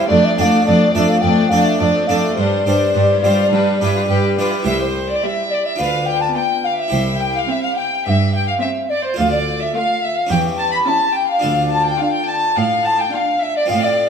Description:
classical, baroque-style concerto movement with solo episodes; 106 BPM; 4/4; straight; A4 = 443 Hz
mellow hollow wooden flute; melody; 0.0-14.1 s; C5 to B5; -18 LUFS; left 1 dB
rich chamber violin section; melody; 0.0-13.6 s; E4 to D5; -26 LUFS; left 7 dB
warm chamber violin section; second line; 0.0-14.1 s; D4 to B5; -23 LUFS; left 2 dB
dark chamber viola section; accompaniment; 0.0-13.5 s; G3 to D4; -22 LUFS; equal
harpsichord; accompaniment; 0.0-14.1 s; C2 to D5; -23 LUFS; right 1 dB
dark chamber cello section; bass; 0.1-14.1 s; C2 to A2; -21 LUFS; right 3 dB
wet recital hall reverb, RT60 1.6 s; -14 LUFS; side -7 dB against mid
0.0-4.7 A section; 4.7-14.1 A section
0.1 Dm/F; 2.4 Gsus4; 3.5 G; 4.7 C; 5.8 Bdim/D; 6.9 C; 9.2 Dm; 10.3 C#dim/E; 11.4 Dm

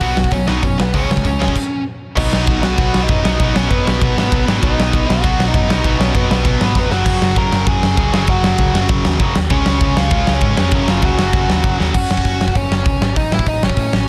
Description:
punk rock; 196 BPM; 4/4; straight; A4 = 440 Hz
dark smooth lead guitar; melody; 0.0-14.1 s; B3 to A#5; -23 LUFS; equal; overdrive, delay
biting overdriven guitar; riff; 0.0-12.4 s; F#2 to C#4; -24 LUFS; equal
tight distorted guitar; riff; 0.0-12.4 s; F#2 to C#4; -25 LUFS; equal; distortion
overdriven picked electric bass; bass; 0.0-14.0 s; E#1 to C#3; -22 LUFS; equal
big rock drum kit; drums; 0.0-14.0 s; crash cymbal, hi-hat, kick drum, ride cymbal, snare drum; -19 LUFS; equal
little or no reverb; dense, heavily limited modern master; -15 LUFS; mono
0.0-2.2 A section; 2.2-11.9 B section; 11.9-14.1 A section
stop 1.6-2.2; drum fill 6.8-7.1, 11.8
0.0 B; 0.9 C#5; 2.2 B; 6.9 F#; 9.5 C#; 10.7 F#5; 13.2 A

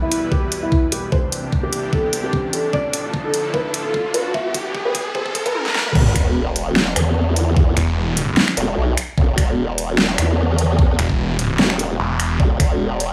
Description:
heavy wobble dubstep; 149 BPM; 4/4; swing 54% on 16ths, half-time; E phrygian; A4 = 438 Hz
felt-muted upright piano; melody; 0.0-5.6 s; E4 to E5; -25 LUFS; equal; vintage 12-bit sampler grit, low-pass filter, dub echo
supersaw pad; sustained chords; 0.0-5.5 s; C2 to B4; -30 LUFS; equal; sidechain pumping, low-pass filter
riser and sub drop; sound effects; 1.3-7.6 s; -28 LUFS; equal
dubstep drum kit; drums; 0.1-13.1 s; crash cymbal, finger snaps, hi-hat, snare drum, toms; -22 LUFS; equal; overdrive, studio reverb
electronic kick drum; drums; 0.3-12.7 s; -20 LUFS; equal; overdrive, studio reverb
formant-sweep wobble bass; bass; 6.0-13.1 s; E1 to E2; -21 LUFS; equal; chorus, overdrive
snarling distorted saw bass; bass; 7.8-8.4, 11.0-12.4 s; E1; -21 LUFS; equal; distortion, overdrive
light reverb; high-pass filter, studio reverb; -19 LUFS; mono
0.0-6.0 A section; 6.0-13.1 B section
build-up 0.0-6.0; filter sweep on felt piano 0.0-6.0; filter sweep 0.0-6.0; riser 1.3-6.0; drum fill 2.7-5.6, 5.6-6.0; drop 6.0-13.1; impact 6.0-7.6
0.0 Em; 1.1 Cadd9; 2.7 Dm; 4.3 Am7/C; 6.0 E5

